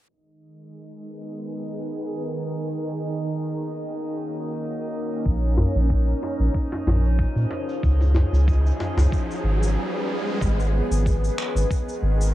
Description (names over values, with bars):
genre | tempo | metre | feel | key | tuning
organic downtempo | 93 BPM | 4/4 | swing 55% on 16ths | G# dorian | A4 = 440 Hz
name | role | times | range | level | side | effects
bowed-like drone | sustained chords | 0.6-12.3 s | D#3 to B4 | -29 LUFS | equal | built-in reverb, sidechain pumping, cassette tape
electronic cabasa and finger snaps | drums | 0.1-12.3 s | none | -36 LUFS | equal | low-pass filter on perc, cassette tape, low-pass filter on snare, low-pass filter on room
drifting glass-harmonics texture | texture | 0.8-9.8 s | D#4 to D#5 | -35 LUFS | right 1 dB | chorus, built-in reverb, cassette tape
round analog bass | bass | 5.3-12.3 s | G#1 to A#2 | -19 LUFS | equal | sidechain pumping
electronic kick drum | drums | 5.3-11.8 s | none | -25 LUFS | equal | cassette tape
riser | sound effects | 7.6-10.4 s | none | -33 LUFS | equal | none
djembe | percussion | 5.6-9.1 s | none | -26 LUFS | left 1 dB | none
room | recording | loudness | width
light reverb | home recording on cassette, low-pass filter | -21 LUFS | side -14 dB against mid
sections
0.1-10.4 A section; 10.4-12.3 B section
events
filter sweep on drum 0.1-10.4; filter sweep 0.1-10.4; riser 7.6-10.4; break 9.8-10.4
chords
0.1 G#m; 2.7 D#m7; 5.3 A#m7; 7.8 C#7; 10.4 G#m